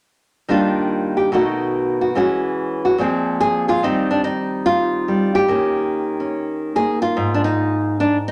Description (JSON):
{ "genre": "solo jazz", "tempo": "144 BPM", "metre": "4/4", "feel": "swing 65% on 8ths", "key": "Eb major", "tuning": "A4 = 438 Hz", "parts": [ { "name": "nylon-string guitar", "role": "solo", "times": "0.5-8.3 s", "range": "Ab2 to Ab4", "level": "-19 LUFS", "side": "equal", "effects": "none" } ], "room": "moderate large studio reverb, RT60 1.1 s", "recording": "none", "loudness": "-19 LUFS", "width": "mono", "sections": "0.5-3.8 A section; 3.8-8.3 B section", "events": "none", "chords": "0.5 Ebmaj9; 1.3 B7; 2.2 E69; 3.0 Bbsus2; 3.8 Eb6; 5.5 Eb7; 7.2 Ab5" }